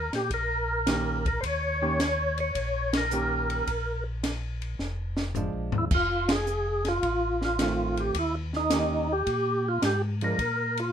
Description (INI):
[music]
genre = soul jazz organ trio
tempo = 107 BPM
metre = 4/4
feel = swing 69% on 8ths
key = unclear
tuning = A4 = 440 Hz
[part]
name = percussive tonewheel organ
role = melody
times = 0.0-10.9 s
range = Eb4 to Db5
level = -27 LUFS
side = equal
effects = slow rotary speaker, overdrive, chorus vibrato
[part]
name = mellow tonewheel organ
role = bass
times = 0.0-10.9 s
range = F1 to Bb2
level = -32 LUFS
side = equal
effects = overdrive, chorus vibrato, slow rotary speaker
[part]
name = compact cocktail drum kit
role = drums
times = 0.1-10.9 s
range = crash cymbal, hi-hat, kick drum, ride cymbal, snare drum, toms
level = -32 LUFS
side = equal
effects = none
[part]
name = hollow-body jazz guitar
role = accompaniment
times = 0.9-10.4 s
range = Eb3 to G4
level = -31 LUFS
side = right 3 dB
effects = none
[sound]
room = moderate studio ambience, RT60 0.5 s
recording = minimal, uncompressed stereo recording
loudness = -25 LUFS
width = side -8 dB against mid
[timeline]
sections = 0.0-10.9 A section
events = band accent 2.8, 6.2; drum fill 4.8-5.9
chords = 0.0 Eb7; 3.7 Bb7; 5.9 F7; 8.2 Eb7; 10.4 Bb5